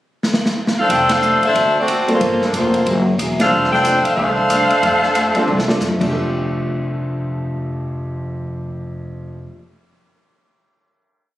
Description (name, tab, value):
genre	jazz, big band swing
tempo	183 BPM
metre	4/4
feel	swing 61% on 8ths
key	F major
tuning	A4 = 440 Hz
part	swinging big-band drum kit	drums	0.2-6.1 s	crash cymbal, hi-hat, kick drum, ride cymbal, rim click, snare drum, toms	-23 LUFS	equal	none
part	bright saxophone section	melody	0.8-5.8 s	F3 to G5	-15 LUFS	equal	none
part	picked acoustic archtop guitar	accompaniment	0.9-9.6 s	G2 to Ab4	-26 LUFS	left 2 dB	none
part	upright bass	bass	0.9-9.4 s	Fb1 to Gb2	-23 LUFS	equal	none
part	warm grand piano	accompaniment	2.1-9.6 s	F2 to A4	-24 LUFS	right 1 dB	none
room	light reverb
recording	recorded on a phone in the room, club reverb, compression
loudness	-15 LUFS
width	side -14 dB against mid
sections	0.0-0.9 pickup bar; 0.9-6.1 A section; 6.1-8.8 final hit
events	drum fill 0.2-0.9, 5.5-5.8; band accent 1.1, 3.4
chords	0.0 N.C.; 0.9 F69; 1.5 D7; 2.2 Gm11; 2.9 Gb9; 3.5 F69